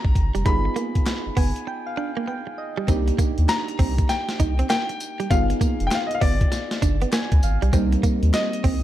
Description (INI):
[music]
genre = R&B, new jack swing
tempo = 99 BPM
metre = 4/4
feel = swing 64% on 16ths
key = C minor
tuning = A4 = 440 Hz
[part]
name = clear concert grand piano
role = melody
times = 0.0-8.8 s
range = D5 to B5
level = -28 LUFS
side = left 3 dB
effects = tape echo
[part]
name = soft electric-piano-like synth keys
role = accompaniment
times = 0.0-8.8 s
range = G3 to Ab5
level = -28 LUFS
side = right 1 dB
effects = chorus
[part]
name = direct-recorded clean electric guitar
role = riff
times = 0.0-8.8 s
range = G3 to Eb4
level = -29 LUFS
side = right 6 dB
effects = analog chorus
[part]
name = round analog bass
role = bass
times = 0.0-8.8 s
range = F1 to Eb2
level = -22 LUFS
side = equal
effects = none
[part]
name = breakbeat sampler-style drum kit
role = drums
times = 0.0-8.8 s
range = hi-hat, kick drum, snare drum, tambourine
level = -22 LUFS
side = equal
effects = none
[part]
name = group handclap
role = percussion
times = 1.1-8.5 s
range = none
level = -41 LUFS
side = left 5 dB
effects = none
[sound]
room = light reverb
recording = dark, warm production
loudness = -20 LUFS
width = side -13 dB against mid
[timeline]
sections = 0.0-2.9 A section; 2.9-8.8 B section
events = synth keys fill 1.1-2.9, 6.8-7.7; break 1.7-2.9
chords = 0.5 G7b9b13; 2.9 Cm9; 5.3 G7b9b13; 7.7 Cm7